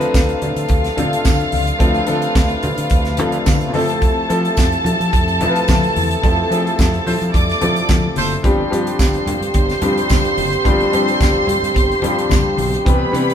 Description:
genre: disco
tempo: 108 BPM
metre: 4/4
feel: straight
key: unclear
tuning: A4 = 442 Hz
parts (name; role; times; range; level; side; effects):
- dark studio violin section; second line; 0.0-13.3 s; F4 to D6; -21 LUFS; equal; none
- warm grand piano; accompaniment; 0.0-13.3 s; E3 to B4; -21 LUFS; left 2 dB; none
- mellow French horn section; sustained chords; 0.0-13.3 s; C3 to B4; -24 LUFS; right 1 dB; none
- fingered electric bass; bass; 0.0-13.3 s; F#1 to F3; -22 LUFS; equal; none
- tight funk drum kit; drums; 0.0-13.3 s; hi-hat, kick drum, snare drum; -18 LUFS; right 1 dB; none
- congas; percussion; 0.1-12.7 s; none; -26 LUFS; left 4 dB; none
- tambourine; percussion; 0.1-12.4 s; none; -33 LUFS; right 7 dB; none
- warm horn section; stabs; 7.1-8.3 s; A3 to C5; -23 LUFS; right 3 dB; none
room: moderate stone room reverb, RT60 1.2 s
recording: band playing live in one room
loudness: -14 LUFS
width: side -9 dB against mid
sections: 0.0-13.3 A section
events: band accent 6.2-8.4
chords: 0.0 Dm7; 3.7 Fmaj7; 8.4 G7sus4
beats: 0.14 0.70 1.25 | 1.81 2.36 2.91 3.47 | 4.02 4.57 5.13 5.68 | 6.23 6.78 7.34 7.89 | 8.44 8.99 9.55 10.10 | 10.65 11.20 11.75 12.30 | 12.86

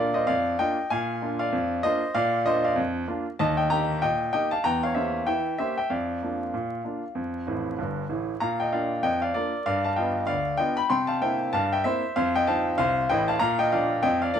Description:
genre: ragtime piano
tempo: 96 BPM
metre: 2/4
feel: swing 58% on 16ths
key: Bb major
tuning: A4 = 438 Hz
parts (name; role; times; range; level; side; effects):
- clear grand piano; solo; 0.0-14.4 s; G1 to C6; -23 LUFS; equal; none
room: moderate studio reverb, RT60 0.5 s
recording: vinyl crackle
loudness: -23 LUFS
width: side -8 dB against mid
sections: 0.0-14.4 A section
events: grand piano fill 7.5-8.4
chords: 0.0 Bb; 3.4 Eb; 4.6 Edim7; 5.9 Bb/F; 7.2 F; 8.4 Bb; 9.7 G7; 10.9 C7; 12.2 F7; 13.4 Bb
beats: 0.28 | 0.91 1.53 | 2.15 2.77 | 3.40 4.02 | 4.65 5.27 | 5.90 6.53 | 7.16 7.78 | 8.41 9.04 | 9.66 10.29 | 10.91 11.53 | 12.16 12.78 | 13.40 14.03

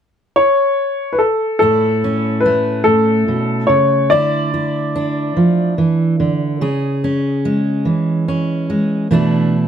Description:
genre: acoustic folk-pop ballad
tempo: 48 BPM (dotted quarters)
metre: 6/8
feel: straight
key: A major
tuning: A4 = 440 Hz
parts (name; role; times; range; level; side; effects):
- clear upright piano; melody; 0.4-5.7 s; A4 to D5; -15 LUFS; left 2 dB; none
- fingerpicked steel-string acoustic guitar; accompaniment; 1.6-9.7 s; A2 to G#4; -15 LUFS; right 1 dB; none
room: light reverb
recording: close, detailed microphones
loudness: -14 LUFS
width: side -8 dB against mid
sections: 0.0-1.6 A section; 1.6-9.7 B section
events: none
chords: 0.0 N.C.; 1.6 A; 4.1 Dmadd9; 6.6 C#m; 9.1 E7sus4/B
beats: 0.37 | 1.62 2.87 | 4.12 5.37 | 6.62 7.87 | 9.12

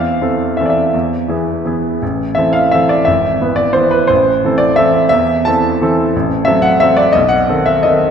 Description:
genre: classical, piano waltz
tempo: 161-186 BPM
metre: 3/4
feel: rubato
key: A minor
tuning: A4 = 440 Hz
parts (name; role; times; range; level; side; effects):
- clear baby grand piano; solo; 0.0-8.1 s; G#1 to A5; -11 LUFS; equal; none
room: wet concert hall reverb, RT60 2.1 s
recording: dark, warm production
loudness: -11 LUFS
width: side -7 dB against mid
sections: 0.0-8.1 A section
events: none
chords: 0.0 Am/E; 0.9 E; 2.0 Am; 3.1 E/G#; 4.1 Am; 6.1 F#dim/A; 7.2 B7b9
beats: 0.21 0.58 | 0.93 1.29 1.65 | 2.01 2.37 2.73 | 3.07 3.41 3.76 | 4.11 4.44 4.78 | 5.12 5.46 5.80 | 6.14 6.47 6.81 | 7.16 7.50 7.85

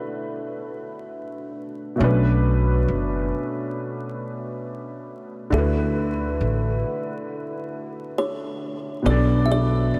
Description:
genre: hip hop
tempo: 68 BPM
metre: 4/4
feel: swing 58% on 16ths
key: unclear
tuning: A4 = 441 Hz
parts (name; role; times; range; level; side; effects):
- dark upright piano; accompaniment; 0.0-10.0 s; B2 to D5; -28 LUFS; equal; none
- upright bass; bass; 2.0-10.0 s; F#1 to D2; -23 LUFS; equal; none
- kalimba; melody; 5.5-10.0 s; A4 to E5; -32 LUFS; equal; diffuse ambient delay
room: moderate huge ambient reverb, RT60 9.1 s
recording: dreamy mix soaked in reverb, vinyl crackle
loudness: -24 LUFS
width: mono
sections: 0.0-10.0 A section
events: break 0.0-5.5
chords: 0.0 D69; 2.0 Bm7; 5.5 D69; 9.1 Bm7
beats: 0.23 1.11 | 1.99 2.87 3.76 4.64 | 5.52 6.40 7.29 8.17 | 9.05 9.93

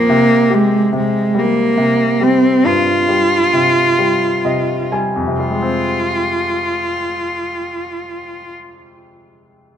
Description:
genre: pop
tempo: 41-48 BPM (dotted quarters)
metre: 6/8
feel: straight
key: F minor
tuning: A4 = 439 Hz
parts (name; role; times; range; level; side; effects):
- rich cello; melody; 0.0-8.5 s; Ab3 to F4; -14 LUFS; right 1 dB; none
- bright concert grand piano; accompaniment; 0.0-9.8 s; F2 to Ab5; -19 LUFS; left 2 dB; none
room: moderate plate reverb, RT60 2.5 s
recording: rough home demo mix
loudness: -13 LUFS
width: side -9 dB against mid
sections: 0.0-5.4 A section; 5.4-8.3 B section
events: slowing down 0.1-5.4; grand piano fill 4.0-5.4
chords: 0.1 Csus4; 5.4 Fmadd9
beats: | 0.09 1.34 | 2.63 3.98 | 5.39 6.84

